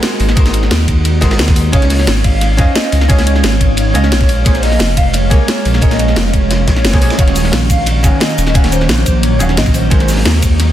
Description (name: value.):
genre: liquid drum and bass.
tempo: 176 BPM.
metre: 4/4.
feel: straight.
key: Eb dorian.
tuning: A4 = 440 Hz.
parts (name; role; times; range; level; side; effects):
archtop guitar, miked and amplified; accompaniment; 0.0-10.7 s; Eb3 to F5; -20 LUFS; right 1 dB; tape echo.
glassy FM pad; sustained chords; 0.0-10.7 s; Gb3 to F5; -20 LUFS; right 1 dB; ensemble chorus, built-in reverb, sidechain pumping.
crunchy breakbeat drum kit; drums; 0.0-10.7 s; hi-hat, ride cymbal, snare drum; -23 LUFS; equal; high-pass filter on cymbals, high-pass filter on hats, high-pass filter on snare, high-pass filter on room.
drum and bass drum kit; drums; 0.0-10.7 s; cabasa, hi-hat, snare drum; -18 LUFS; equal; none.
dark detuned saw bass; bass; 0.2-10.7 s; Eb1 to F2; -13 LUFS; equal; none.
electronic kick drum; drums; 0.4-10.5 s; none; -12 LUFS; equal; none.
hollow clarinet-like synth lead; melody; 1.7-10.1 s; C5 to F5; -21 LUFS; equal; analog chorus, vintage 12-bit sampler grit, tape echo.
room: little or no reverb.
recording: dense, heavily limited modern master.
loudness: -9 LUFS.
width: side -12 dB against mid.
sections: 0.0-10.7 A section.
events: none.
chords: 0.0 Ab9; 1.7 Dbmaj9; 4.3 Bbm9; 7.2 Ebm9; 9.9 Ab9.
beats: 0.03 | 0.37 0.71 1.05 1.39 | 1.73 2.07 2.41 2.75 | 3.10 3.44 3.78 4.12 | 4.46 4.80 5.14 5.48 | 5.82 6.16 6.50 6.85 | 7.19 7.53 7.87 8.21 | 8.55 8.89 9.23 9.57 | 9.91 10.26 10.60.